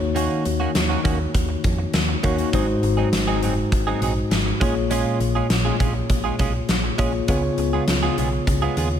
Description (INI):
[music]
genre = 1980s-style pop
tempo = 101 BPM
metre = 4/4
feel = straight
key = Eb minor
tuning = A4 = 440 Hz
[part]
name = mellow tine electric piano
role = accompaniment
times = 0.0-9.0 s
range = Ab2 to Db5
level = -23 LUFS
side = left 3 dB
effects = slow stereo tremolo
[part]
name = direct-recorded clean electric guitar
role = riff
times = 0.0-9.0 s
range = Eb3 to Ab4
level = -27 LUFS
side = right 7 dB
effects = analog chorus, tape echo
[part]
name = solid FM bass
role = bass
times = 0.0-9.0 s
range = Gb1 to F2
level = -25 LUFS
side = equal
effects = none
[part]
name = big rock drum kit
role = drums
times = 0.2-8.9 s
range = hi-hat, kick drum, snare drum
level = -24 LUFS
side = equal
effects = gated reverb
[sound]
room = light reverb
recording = none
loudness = -19 LUFS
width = side -9 dB against mid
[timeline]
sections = 0.0-9.0 A section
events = none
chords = 0.0 Ebm7; 2.5 Ab7; 4.6 Bbm7; 7.3 Db7